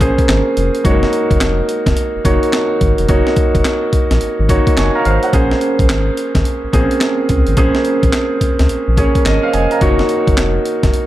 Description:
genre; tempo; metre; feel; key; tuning
R&B, new jack swing; 107 BPM; 4/4; swing 64% on 16ths; Bb minor; A4 = 441 Hz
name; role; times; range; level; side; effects
warm concert grand piano; accompaniment; 0.0-11.1 s; Ab3 to Db6; -15 LUFS; right 1 dB; none
round analog bass; bass; 0.0-10.9 s; F1 to Db2; -16 LUFS; equal; none
breakbeat sampler-style drum kit; drums; 0.0-11.1 s; handclaps, hi-hat, kick drum, snare drum; -16 LUFS; equal; none
room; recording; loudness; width
light reverb, digital ambience; dark, warm production; -12 LUFS; side -14 dB against mid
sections
0.0-11.1 A section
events
none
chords
0.0 Bbm9; 0.8 Gb6

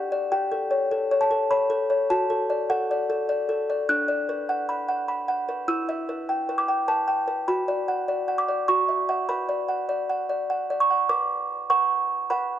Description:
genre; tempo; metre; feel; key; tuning
classical, lullaby for music box; 100 BPM; 3/4; straight; D major, B minor from 3.9 s; A4 = 440 Hz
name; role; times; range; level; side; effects
music box; solo; 0.0-12.6 s; D4 to F#6; -22 LUFS; equal; none
room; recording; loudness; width
moderate plate reverb, RT60 3.2 s; none; -22 LUFS; side -11 dB against mid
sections
0.0-11.1 A section; 11.1-12.6 B section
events
none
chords
0.3 A7/G; 2.1 D/F#; 3.9 Bm/D; 5.7 Em; 7.5 Bm/F#; 8.7 F#5; 9.3 Bm

